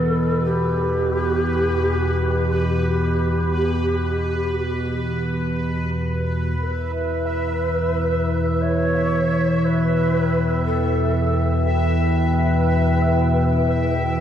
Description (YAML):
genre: dark ambient drone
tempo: 59 BPM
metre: 4/4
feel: straight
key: E minor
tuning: A4 = 439 Hz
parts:
  - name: mellow hollow shakuhachi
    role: melody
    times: 0.0-14.2 s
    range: G4 to C#5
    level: -25 LUFS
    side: equal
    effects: tape echo
  - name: analog drone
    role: drone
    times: 0.0-14.2 s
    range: E2 to B2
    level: -20 LUFS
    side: equal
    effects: chorus
  - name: bubbling stepped-filter texture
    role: texture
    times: 0.0-14.2 s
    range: B4 to E5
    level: -28 LUFS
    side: left 1 dB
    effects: chorus, built-in reverb
  - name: dark analog pad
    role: sustained chords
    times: 6.6-14.2 s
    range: E4 to G5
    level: -26 LUFS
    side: right 1 dB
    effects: lush chorus
room: wet cathedral reverb, RT60 4.9 s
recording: dark, warm production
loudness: -18 LUFS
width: side -9 dB against mid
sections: 0.0-6.6 A section; 6.6-14.2 B section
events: none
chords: 0.0 Em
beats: 0.47 1.49 | 2.51 3.52 4.54 5.56 | 6.58 7.59 8.61 9.63 | 10.64 11.66 12.68 13.69